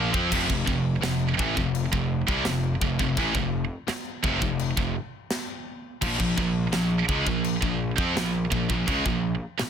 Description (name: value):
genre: heavy metal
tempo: 84 BPM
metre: 4/4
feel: straight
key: unclear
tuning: A4 = 440 Hz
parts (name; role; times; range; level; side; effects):
- heavy high-gain guitar; riff; 0.0-9.6 s; F2 to C4; -28 LUFS; right 10 dB; distortion
- high-gain distorted guitar; riff; 0.0-9.6 s; F2 to C4; -29 LUFS; left 9 dB; distortion
- scooped high-gain guitar; riff; 0.0-9.6 s; F2 to C4; -31 LUFS; equal; distortion
- fuzz picked electric bass; bass; 0.0-9.6 s; F1 to F2; -31 LUFS; equal; overdrive
- tight metal drum kit; drums; 0.1-9.7 s; china cymbal, crash cymbal, kick drum, snare drum; -30 LUFS; equal; none
room: little or no reverb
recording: dense, heavily limited modern master, faint mains hum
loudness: -23 LUFS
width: side -8 dB against mid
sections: 0.0-9.7 A section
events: none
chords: 0.3 F5; 6.0 Bb5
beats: | 0.31 1.02 1.73 2.45 | 3.16 3.88 4.59 5.30 | 6.02 6.73 7.45 8.16 | 8.87 9.59